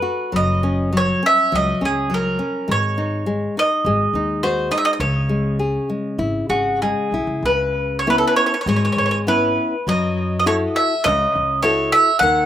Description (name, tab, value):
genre	fado-style ballad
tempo	101 BPM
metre	4/4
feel	rubato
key	C# minor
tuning	A4 = 435 Hz
part	bowl-back mandolin	melody	0.0-12.5 s	F#4 to F#5	-18 LUFS	right 1 dB	slapback echo
part	nylon-string guitar	accompaniment	0.0-12.5 s	C#3 to A4	-22 LUFS	left 2 dB	none
part	upright bass	bass	0.3-12.5 s	F#1 to F#2	-25 LUFS	equal	none
room	little or no reverb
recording	recorded outdoors, with no room sound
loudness	-16 LUFS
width	side -11 dB against mid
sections	0.0-7.4 A section; 7.4-12.5 A section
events	none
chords	0.3 F#; 2.7 G#sus4; 3.8 G#5; 5.0 C#m7; 9.9 F#m7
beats	| 0.33 0.93 1.52 2.10 | 2.68 3.26 3.84 4.42 | 4.99 5.58 6.18 6.81 | 7.43 8.05 8.66 9.26 | 9.86 10.45 11.05 11.63 | 12.21